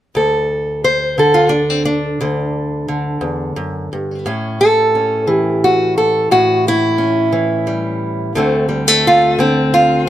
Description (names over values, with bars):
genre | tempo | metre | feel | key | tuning
acoustic country blues, solo or duo | 58 BPM (dotted quarters) | 12/8 | straight | unclear | A4 = 440 Hz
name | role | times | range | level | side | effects
fingerpicked acoustic archtop guitar | solo | 0.1-10.1 s | D2 to C5 | -13 LUFS | equal | none
room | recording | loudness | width
light reverb | close, detailed microphones | -13 LUFS | side -12 dB against mid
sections
0.1-8.4 A section; 8.4-10.1 B section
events
none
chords
0.1 D5; 4.3 A7; 8.4 D5